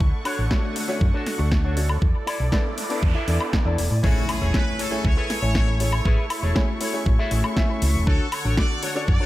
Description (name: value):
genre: nu-disco, nu disco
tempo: 119 BPM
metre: 4/4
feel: straight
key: A major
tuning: A4 = 440 Hz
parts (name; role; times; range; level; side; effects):
- rich symphonic string section; sustained chords; 0.0-9.3 s; D3 to C#6; -32 LUFS; right 2 dB; sidechain pumping
- hollow-body short-scale fingered electric bass; bass; 0.0-9.2 s; E1 to A2; -22 LUFS; equal; tube saturation, sidechain pumping
- electronic kick drum; drums; 0.0-9.2 s; none; -21 LUFS; equal; overdrive, studio reverb
- electric guitar with an envelope filter; riff; 0.2-9.3 s; D4 to E5; -32 LUFS; left 2 dB; lush chorus, dub echo
- house drum kit; drums; 0.3-8.9 s; crash cymbal, hi-hat, snare drum, woodblock; -29 LUFS; left 1 dB; studio reverb, dub echo
- warm grand piano; accompaniment; 0.5-9.1 s; A3 to C#6; -30 LUFS; left 2 dB; dub echo
- noise sweep and impact; sound effects; 2.4-6.1 s; none; -33 LUFS; right 1 dB; none
- muted trumpet section; melody; 4.0-9.3 s; F#4 to D5; -31 LUFS; left 1 dB; dub echo
room: digital ambience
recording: echo-heavy mix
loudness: -20 LUFS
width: side -16 dB against mid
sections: 0.0-4.0 A section; 4.0-9.3 B section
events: filter sweep on grand piano 0.0-4.0; noise sweep 2.4-4.0; drop 4.0-9.3; impact 4.0-6.1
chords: 0.0 Dmaj7; 2.0 E7sus4; 4.0 Amaj7; 8.1 Dmaj7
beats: | 0.01 0.51 1.01 1.52 | 2.02 2.53 3.03 3.54 | 4.04 4.54 5.05 5.55 | 6.06 6.56 7.07 7.57 | 8.07 8.58 9.08